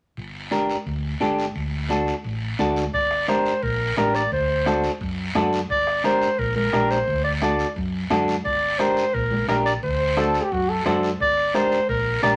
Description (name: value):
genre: latin, cumbia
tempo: 174 BPM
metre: 4/4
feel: straight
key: G harmonic minor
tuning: A4 = 440 Hz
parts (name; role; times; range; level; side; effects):
- hollow-body short-scale fingered electric bass; bass; 0.2-12.4 s; G1 to F#2; -31 LUFS; equal; none
- guiro; percussion; 0.2-12.4 s; none; -37 LUFS; equal; none
- semi-hollow electric guitar; accompaniment; 0.5-12.4 s; D4 to C5; -25 LUFS; equal; none
- congas; percussion; 0.5-12.4 s; none; -34 LUFS; equal; none
- clear clarinet; melody; 2.9-12.3 s; Bb4 to D5; -24 LUFS; equal; none
- bombo; percussion; 2.9-12.4 s; none; -37 LUFS; equal; none
- bright trombone; second line; 10.2-11.1 s; F#4 to A4; -26 LUFS; equal; none
room: moderate studio reverb, RT60 0.7 s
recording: none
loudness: -22 LUFS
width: mono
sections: 0.2-2.9 A section; 2.9-12.4 B section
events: none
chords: 0.2 Gm; 1.6 D; 2.9 Gm; 4.3 D7; 5.7 Gm; 7.1 D; 8.5 Gm; 9.8 D7; 11.2 Gm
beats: | 0.17 0.52 0.87 1.21 | 1.56 1.90 2.25 2.59 | 2.94 3.28 3.63 3.97 | 4.32 4.66 5.01 5.35 | 5.70 6.04 6.39 6.73 | 7.08 7.42 7.76 8.11 | 8.45 8.80 9.14 9.48 | 9.83 10.17 10.52 10.86 | 11.20 11.55 11.89 12.23